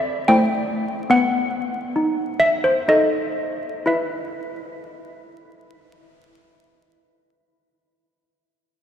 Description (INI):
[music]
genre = classical, tune for handbells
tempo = 59-76 BPM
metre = 3/4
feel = straight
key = E minor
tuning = A4 = 440 Hz
[part]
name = malleted handbells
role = solo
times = 0.0-7.1 s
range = A3 to G5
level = -18 LUFS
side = left 1 dB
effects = none
[sound]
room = wet church reverb, RT60 4.2 s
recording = heard from further back in the room, vinyl crackle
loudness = -18 LUFS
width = side -9 dB against mid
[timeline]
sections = 0.0-3.9 A section; 3.9-6.9 B section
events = slowing down 0.0-3.9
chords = 0.3 Am; 1.1 B7; 3.9 E5